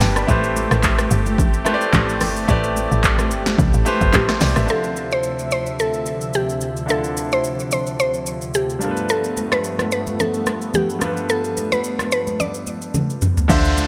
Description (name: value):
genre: amapiano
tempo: 109 BPM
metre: 4/4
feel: swing 55% on 16ths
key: D dorian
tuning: A4 = 440 Hz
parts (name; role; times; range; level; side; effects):
- bright concert grand piano; accompaniment; 0.0-13.9 s; D3 to B5; -27 LUFS; equal; none
- warm analog pad; sustained chords; 0.0-13.5 s; D2 to E5; -29 LUFS; equal; chorus, tremolo
- woody log drum bass; bass; 0.0-4.7, 13.5-13.9 s; G1 to D2; -23 LUFS; equal; none
- deep house drum kit; drums; 0.0-13.9 s; handclaps, hi-hat, kick drum, rim click, shaker, snare drum, toms; -23 LUFS; equal; gated reverb
- congas; percussion; 0.0-4.6, 9.4-13.9 s; none; -30 LUFS; equal; none
- mallet-like synth pluck; melody; 4.2-13.2 s; G4 to D5; -24 LUFS; equal; chorus, digital delay
- downlifter; sound effects; 13.5-13.9 s; none; -27 LUFS; equal; none
room: moderate plate reverb, RT60 2.8 s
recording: bright 1980s-style digital production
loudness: -20 LUFS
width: mono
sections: 0.0-4.7 A section; 4.7-13.5 B section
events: drop 0.0-4.7; drum fill 12.9-13.5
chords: 0.3 Am7; 4.7 Dm9; 8.8 G9